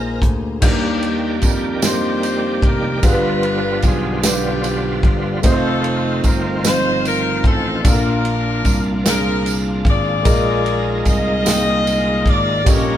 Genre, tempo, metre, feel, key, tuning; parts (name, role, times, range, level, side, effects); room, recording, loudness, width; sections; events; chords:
slow gospel; 50 BPM (dotted quarters); 6/8; straight; Eb major; A4 = 439 Hz
dark baby grand piano; accompaniment; 0.0-13.0 s; G2 to G5; -22 LUFS; left 1 dB
bright tonewheel organ; sustained chords; 0.0-13.0 s; D3 to D5; -24 LUFS; right 1 dB; slow rotary speaker, overdrive, chorus vibrato
warm symphonic string section; sustained chords; 0.0-0.6 s; C5 to Bb5; -34 LUFS; left 6 dB
vintage slap bass; bass; 0.0-13.0 s; F1 to F2; -23 LUFS; equal
warm soul drum kit; drums; 0.2-12.9 s; crash cymbal, hi-hat, kick drum, ride cymbal, snare drum; -18 LUFS; equal
tambourine; percussion; 0.6-13.0 s; -27 LUFS; right 7 dB
warm horn section; melody; 0.7-13.0 s; Bb3 to Eb5; -22 LUFS; left 2 dB; tape echo
light reverb; band playing live in one room; -15 LUFS; side -11 dB against mid
0.6-13.0 A section
0.0 Bb9sus4; 0.6 Ebmaj7; 3.0 G7; 5.4 F7; 7.9 Bb; 10.3 Bb7sus4